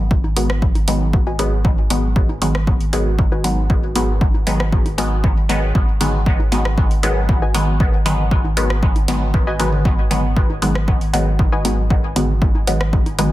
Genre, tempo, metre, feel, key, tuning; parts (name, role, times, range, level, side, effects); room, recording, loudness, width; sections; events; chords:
dub techno; 117 BPM; 4/4; straight; G# minor; A4 = 439 Hz
filtered dub chord stab; stabs; 0.0-13.3 s; D#3 to B3; -21 LUFS; equal; chorus, phaser, dub echo
warm sub bass; bass; 0.0-13.3 s; G#1; -20 LUFS; equal; tube saturation, sidechain pumping
electronic kick drum; drums; 0.1-13.0 s; -17 LUFS; equal; overdrive
electronic bongos and toms; percussion; 0.2-13.3 s; -28 LUFS; equal; sidechain pumping on perc, sidechain pumping on toms, dub echo
deep house drum kit; drums; 0.4-13.3 s; hi-hat, rim click; -26 LUFS; equal; overdrive
warbly dusty pluck; riff; 1.3-13.3 s; F#4 to G#5; -29 LUFS; left 2 dB; chorus, sidechain pumping, dub echo
light reverb; dense, heavily limited modern master; -15 LUFS; side -15 dB against mid
0.0-13.3 A section
0.0 G#m7